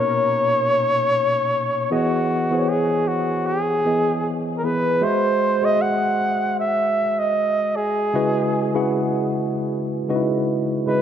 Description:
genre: R&B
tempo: 77 BPM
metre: 4/4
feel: swing 55% on 16ths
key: unclear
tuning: A4 = 441 Hz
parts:
  - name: trumpet with bucket mute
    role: melody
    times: 0.0-11.0 s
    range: F#4 to F#5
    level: -20 LUFS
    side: equal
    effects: ping-pong delay
  - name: tine electric piano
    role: accompaniment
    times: 0.0-11.0 s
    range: A#2 to F#5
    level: -22 LUFS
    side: equal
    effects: medium stereo tremolo
room: moderate plate reverb, RT60 3.8 s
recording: dreamy mix soaked in reverb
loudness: -18 LUFS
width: side -9 dB against mid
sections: 0.0-11.0 A section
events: none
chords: 0.0 Bmaj9; 1.9 Emaj7; 5.0 G#7b13; 8.1 C#m11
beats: 0.34 1.12 | 1.90 2.68 3.46 4.24 | 5.01 5.79 6.57 7.35 | 8.13 8.91 9.69 10.47

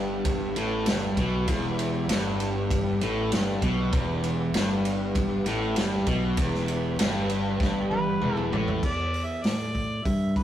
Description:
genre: blues rock power trio and southern rock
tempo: 98 BPM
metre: 4/4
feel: straight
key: E minor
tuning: A4 = 440 Hz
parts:
  - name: percussive tonewheel organ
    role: sustained chords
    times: 0.0-8.8 s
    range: B3 to B4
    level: -37 LUFS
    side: right 1 dB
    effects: slow rotary speaker, overdrive
  - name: overdriven semi-hollow guitar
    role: riff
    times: 0.0-8.8 s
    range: E2 to B2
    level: -27 LUFS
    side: equal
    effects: none
  - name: modern bright fingered electric bass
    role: bass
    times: 0.0-10.4 s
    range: E1 to A2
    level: -30 LUFS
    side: equal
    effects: none
  - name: vintage drum kit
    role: drums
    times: 0.2-10.4 s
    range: crash cymbal, hi-hat, kick drum, ride cymbal, snare drum, toms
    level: -29 LUFS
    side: equal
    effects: none
  - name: mellow harmonica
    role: melody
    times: 7.9-10.4 s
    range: B4 to E5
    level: -30 LUFS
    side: right 1 dB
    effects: overdrive
room: moderate small room reverb, RT60 0.6 s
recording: rough rehearsal-room recording, warm saturation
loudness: -24 LUFS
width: side -11 dB against mid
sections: 0.0-8.8 A section; 8.8-10.4 B section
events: drum fill 7.6-8.8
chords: 0.0 Em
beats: 0.26 0.87 | 1.49 2.10 2.71 3.32 | 3.94 4.55 5.16 5.77 | 6.38 6.99 7.60 8.21 | 8.83 9.44 10.05

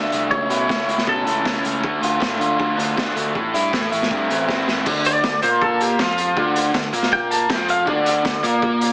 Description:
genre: indie rock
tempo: 159 BPM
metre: 4/4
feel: straight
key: unclear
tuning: A4 = 445 Hz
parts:
  - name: twelve-string electric guitar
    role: melody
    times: 0.0-1.6, 5.1-8.9 s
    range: F4 to A5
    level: -21 LUFS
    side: equal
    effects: plate reverb, analog delay
  - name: raw garage guitar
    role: riff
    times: 0.0-8.9 s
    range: A2 to Bb4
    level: -20 LUFS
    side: equal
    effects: overdrive, spring reverb
  - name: modern bright picked electric bass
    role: bass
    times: 0.0-8.9 s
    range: A1 to D3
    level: -28 LUFS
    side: equal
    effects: none
  - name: raw garage drum kit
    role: drums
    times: 0.1-8.9 s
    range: crash cymbal, hi-hat, kick drum, snare drum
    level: -24 LUFS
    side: equal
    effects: none
room: light reverb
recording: heavily compressed radio sound, small speaker sound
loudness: -17 LUFS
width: side -25 dB against mid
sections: 0.0-4.9 A section; 4.9-8.9 B section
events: drum fill 4.5-4.9; clean electric guitar solo 4.9-8.9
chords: 0.3 A/C#; 1.8 Dm; 3.4 Am; 4.9 Dm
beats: | 0.31 0.69 1.07 1.45 | 1.83 2.21 2.59 2.97 | 3.35 3.73 4.11 4.49 | 4.86 5.24 5.62 6.00 | 6.37 6.75 7.12 7.50 | 7.87 8.25 8.62

